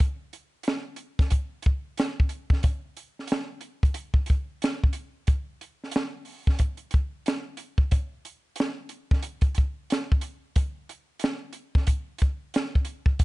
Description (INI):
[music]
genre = R&B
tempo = 91 BPM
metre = 4/4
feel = swing 60% on 16ths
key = none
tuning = none
[part]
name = compact cocktail drum kit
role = drums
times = 0.0-13.2 s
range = hi-hat, kick drum, snare drum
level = -23 LUFS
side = equal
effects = none
[sound]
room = little or no reverb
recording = dark, warm production, nothing above 10.8 kHz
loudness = -25 LUFS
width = side -21 dB against mid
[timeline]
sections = 0.0-13.2 A section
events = none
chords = none